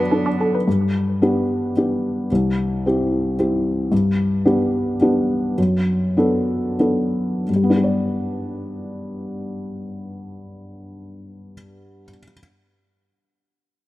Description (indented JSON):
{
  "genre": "neoclassical piano and strings",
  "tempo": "86-113 BPM",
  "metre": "3/4",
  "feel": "rubato",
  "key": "G major",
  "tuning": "A4 = 440 Hz",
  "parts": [
    { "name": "rich cello", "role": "second line", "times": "0.0-0.5 s", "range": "B3", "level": "-35 LUFS", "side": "right 4 dB", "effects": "none" },
    { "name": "felt-muted upright piano", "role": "accompaniment", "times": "0.0-12.4 s", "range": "C2 to D5", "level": "-18 LUFS", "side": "left 1 dB", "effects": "none" },
    { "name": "resonant blip pluck", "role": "arpeggios", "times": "0.0-0.6 s", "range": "D4 to B4", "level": "-26 LUFS", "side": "right 1 dB", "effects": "chorus, tape echo" }
  ],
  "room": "light reverb, small room ambience",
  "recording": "rough home demo mix",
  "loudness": "-18 LUFS",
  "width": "side -16 dB against mid",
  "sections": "0.7-7.5 A section; 7.5-11.5 B section",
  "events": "slowing down 3.1-7.5",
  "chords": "0.0 D6/F#; 0.7 G; 2.3 C; 3.9 G; 5.6 D6/F#; 7.5 G",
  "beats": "0.10 | 0.66 1.21 1.75 | 2.30 2.84 3.38 | 3.91 4.45 5.00 | 5.57 6.16 6.79 | 7.48 8.15 8.83 | 9.50 10.17 10.84"
}